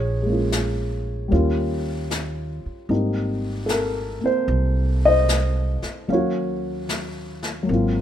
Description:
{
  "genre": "jazz ballad",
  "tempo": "75 BPM",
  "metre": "4/4",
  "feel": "swing 69% on 8ths",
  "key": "unclear",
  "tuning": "A4 = 436 Hz",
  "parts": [
    { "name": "dark baby grand piano", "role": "accompaniment", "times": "0.0-8.0 s", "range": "Gb3 to F5", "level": "-22 LUFS", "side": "left 1 dB", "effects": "none" },
    { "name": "upright bass", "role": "bass", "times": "0.0-8.0 s", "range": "Ab1 to Eb2", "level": "-24 LUFS", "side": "right 1 dB", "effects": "none" },
    { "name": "jazz brush drum kit", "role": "drums", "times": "0.5-8.0 s", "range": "brushed snare drum, hi-hat, snare drum", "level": "-30 LUFS", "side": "left 3 dB", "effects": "none" }
  ],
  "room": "little or no reverb",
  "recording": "minimal, uncompressed stereo recording",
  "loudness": "-20 LUFS",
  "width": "side -10 dB against mid",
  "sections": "0.0-8.0 A section",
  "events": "none",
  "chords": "0.0 Bbm7; 1.3 Eb9; 2.9 Abmaj9; 6.1 Ebm9"
}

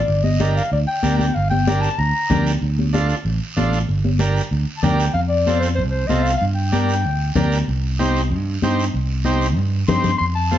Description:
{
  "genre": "latin, cumbia",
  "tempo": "190 BPM",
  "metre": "4/4",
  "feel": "straight",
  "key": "G minor",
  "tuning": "A4 = 440 Hz",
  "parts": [
    { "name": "mellow clarinet", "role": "melody", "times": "0.0-2.5, 4.8-7.5, 9.9-10.6 s", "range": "C5 to C6", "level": "-22 LUFS", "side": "left 2 dB", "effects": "none" },
    { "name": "fingered electric bass", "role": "bass", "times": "0.1-10.6 s", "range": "G1 to G2", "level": "-20 LUFS", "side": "right 1 dB", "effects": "none" },
    { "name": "congas", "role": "percussion", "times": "0.1-10.6 s", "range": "none", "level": "-23 LUFS", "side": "left 4 dB", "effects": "none" },
    { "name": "guiro", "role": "percussion", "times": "0.1-10.6 s", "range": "none", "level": "-33 LUFS", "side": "right 5 dB", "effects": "none" },
    { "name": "overdriven combo organ", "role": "accompaniment", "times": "0.4-10.6 s", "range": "C4 to C5", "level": "-25 LUFS", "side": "right 3 dB", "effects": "none" }
  ],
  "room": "moderate studio reverb, RT60 0.8 s",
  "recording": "heard from further back in the room, nothing above 7.5 kHz",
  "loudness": "-17 LUFS",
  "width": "side -11 dB against mid",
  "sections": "0.0-5.1 A section; 5.1-10.6 B section",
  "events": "none",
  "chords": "0.1 Gm; 2.6 Dm; 3.9 Gm; 5.1 F; 6.4 Gm; 7.7 Cm"
}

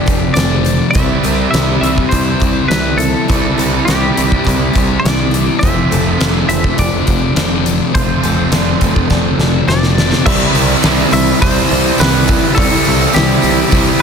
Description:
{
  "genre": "rock, shoegaze and dream pop",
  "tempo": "103 BPM",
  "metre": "4/4",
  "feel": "straight",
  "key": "C major",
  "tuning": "A4 = 440 Hz",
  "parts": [
    { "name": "twelve-string electric guitar", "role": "melody", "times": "0.0-14.0 s", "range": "G4 to E5", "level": "-20 LUFS", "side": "equal", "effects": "tape echo" },
    { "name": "picked twelve-string acoustic guitar", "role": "arpeggios", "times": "0.0-14.0 s", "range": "F3 to A4", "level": "-24 LUFS", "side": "left 8 dB", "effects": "wide subtle chorus, tape echo" },
    { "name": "raw garage guitar", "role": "riff", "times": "0.0-14.0 s", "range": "F2 to F4", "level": "-19 LUFS", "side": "right 15 dB", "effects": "overdrive, reverse reverb" },
    { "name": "thick fuzz guitar", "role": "riff", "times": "0.0-14.0 s", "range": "F2 to C4", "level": "-18 LUFS", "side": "left 10 dB", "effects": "distortion, lush chorus" },
    { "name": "picked electric bass", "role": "bass", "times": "0.1-13.9 s", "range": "F1 to C2", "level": "-18 LUFS", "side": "right 1 dB", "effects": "none" },
    { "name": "huge arena drum kit", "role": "drums", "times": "0.1-13.9 s", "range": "crash cymbal, hi-hat, kick drum, snare drum", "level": "-15 LUFS", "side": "equal", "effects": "none" },
    { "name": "raw garage guitar", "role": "riff", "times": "10.3-14.0 s", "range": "C3 to E4", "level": "-18 LUFS", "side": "right 3 dB", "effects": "overdrive" },
    { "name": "tambourine", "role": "percussion", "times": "10.5-13.9 s", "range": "none", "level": "-29 LUFS", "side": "right 14 dB", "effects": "none" }
  ],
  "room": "small room ambience",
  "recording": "dense, heavily limited modern master",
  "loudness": "-10 LUFS",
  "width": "side -6 dB against mid",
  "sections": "0.0-10.3 A section; 10.3-14.0 B section",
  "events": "drum fill 9.1-10.3",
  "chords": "0.0 F6; 0.9 C; 5.6 F6; 10.3 C"
}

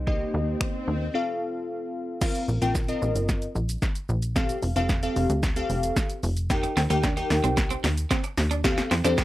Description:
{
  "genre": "dance-pop",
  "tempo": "112 BPM",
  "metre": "4/4",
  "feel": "straight",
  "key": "Bb major",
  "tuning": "A4 = 435 Hz",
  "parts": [
    { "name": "glassy digital keys", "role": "accompaniment", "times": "0.0-9.2 s", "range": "Bb3 to G5", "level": "-28 LUFS", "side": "left 2 dB", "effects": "chorus, sidechain pumping" },
    { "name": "plucky analog bass", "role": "bass", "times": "0.0-9.2 s", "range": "F1 to F2", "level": "-26 LUFS", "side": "equal", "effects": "sidechain pumping" },
    { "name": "swell", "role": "sound effects", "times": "0.0-1.1 s", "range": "none", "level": "-37 LUFS", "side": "left 2 dB", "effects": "none" },
    { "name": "punchy analog drum machine", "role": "drums", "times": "0.1-9.2 s", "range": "crash cymbal, finger snaps, hi-hat, kick drum, shaker, snare drum", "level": "-26 LUFS", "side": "equal", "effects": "none" },
    { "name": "electric guitar at the edge of break-up", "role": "riff", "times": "6.6-9.2 s", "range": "Bb3 to D4", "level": "-30 LUFS", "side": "right 5 dB", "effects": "wide subtle chorus" }
  ],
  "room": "little or no reverb",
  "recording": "dry, close 1970s-style studio recording",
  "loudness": "-23 LUFS",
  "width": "side -16 dB against mid",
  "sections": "0.0-2.2 A section; 2.2-9.2 B section",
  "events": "swell 0.0-2.2; break 1.1-2.2; build-up 2.2-9.2; drum fill 2.2-9.2",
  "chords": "0.1 Eb; 1.1 F; 2.2 Bbsus2; 4.4 Fadd9; 6.5 Eb; 8.6 Fadd9"
}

